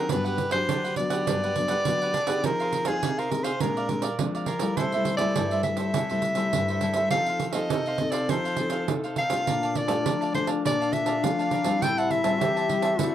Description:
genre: samba and choro.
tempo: 102 BPM.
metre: 4/4.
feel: straight.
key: unclear.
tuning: A4 = 440 Hz.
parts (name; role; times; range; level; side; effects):
breathy soprano saxophone; melody; 0.0-13.1 s; Ab4 to G5; -27 LUFS; equal; none.
mellow duduk; second line; 0.0-0.1, 9.5-13.1 s; D4 to G4; -29 LUFS; left 9 dB; none.
cavaquinho; accompaniment; 0.0-13.1 s; D4 to A5; -32 LUFS; right 3 dB; none.
nylon-string guitar; accompaniment; 0.0-13.1 s; G2 to A4; -30 LUFS; left 3 dB; none.
pandeiro; percussion; 0.1-13.1 s; none; -30 LUFS; right 9 dB; none.
room: light reverb.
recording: dry, close 1970s-style studio recording.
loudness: -23 LUFS.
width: side -11 dB against mid.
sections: 0.1-13.1 A section.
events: none.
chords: 0.1 Gmaj7; 2.4 Fm7; 3.6 Bb9; 4.8 C6; 7.1 F7; 9.5 Bbmaj7; 11.8 Am7.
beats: | 0.10 0.69 1.27 1.86 | 2.44 3.03 3.61 4.20 | 4.78 5.37 5.96 6.54 | 7.13 7.71 8.30 8.89 | 9.47 10.06 10.65 11.23 | 11.82 12.41 12.99.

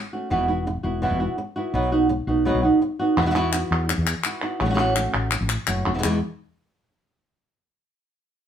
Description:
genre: flamenco.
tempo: 168 BPM.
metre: 4/4.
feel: straight.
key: unclear.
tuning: A4 = 439 Hz.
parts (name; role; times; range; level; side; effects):
flamenco guitar; melody; 0.1-6.2 s; E2 to F#4; -22 LUFS; right 2 dB; none.
woody fretless electric bass; bass; 0.3-6.2 s; E1 to E2; -25 LUFS; left 1 dB; none.
palmas hand claps; percussion; 3.2-6.1 s; none; -26 LUFS; left 2 dB; none.
room: wet studio ambience, RT60 0.5 s.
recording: band playing live in one room.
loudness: -20 LUFS.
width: side -9 dB against mid.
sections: 0.3-6.0 A section; 6.0-7.5 B section.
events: none.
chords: 0.3 Esus2; 1.7 B; 3.2 Esus2; 4.6 A6; 6.0 N.C..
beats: | 0.31 0.67 1.03 1.38 | 1.74 2.10 2.46 2.81 | 3.17 3.53 3.89 4.24 | 4.60 4.96 5.32 5.67 | 6.03.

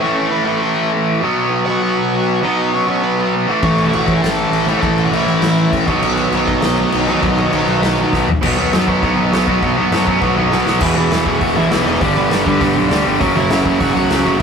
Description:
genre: punk rock.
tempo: 200 BPM.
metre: 4/4.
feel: straight.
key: unclear.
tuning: A4 = 439 Hz.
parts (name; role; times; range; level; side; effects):
high-gain lead guitar; melody; 0.0-8.1, 10.8-14.4 s; A3 to A5; -22 LUFS; left 1 dB; distortion.
crunchy overdriven guitar; riff; 0.0-14.4 s; E2 to B3; -18 LUFS; right 4 dB; none.
tight distorted guitar; riff; 0.0-14.4 s; E2 to B3; -19 LUFS; left 4 dB; distortion.
raw garage guitar; riff; 3.6-14.4 s; A2 to G#4; -22 LUFS; equal; overdrive.
fuzz picked electric bass; bass; 3.6-14.4 s; E1 to F#2; -22 LUFS; left 1 dB; overdrive.
raw garage drum kit; drums; 3.6-14.4 s; crash cymbal, hi-hat, kick drum, snare drum, toms; -20 LUFS; left 1 dB; none.
room: moderate studio reverb, RT60 0.5 s.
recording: rough rehearsal-room recording, tube saturation.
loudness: -13 LUFS.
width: side -6 dB against mid.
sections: 0.0-8.4 A section; 8.4-10.8 B section; 10.8-14.4 C section.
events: half time 0.0-8.4; drum fill 8.1-8.4, 10.5.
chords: 0.0 A; 1.2 B; 3.5 A; 5.9 B; 10.8 E; 12.0 G; 13.2 F#.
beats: | 0.02 0.32 0.63 0.93 | 1.23 1.53 1.83 2.13 | 2.43 2.73 3.03 3.33 | 3.63 3.93 4.23 4.53 | 4.83 5.13 5.43 5.73 | 6.03 6.33 6.63 6.93 | 7.23 7.53 7.83 8.13 | 8.43 8.72 9.02 9.32 | 9.62 9.92 10.22 10.52 | 10.82 11.12 11.41 11.71 | 12.01 12.31 12.61 12.91 | 13.21 13.50 13.80 14.10 | 14.40.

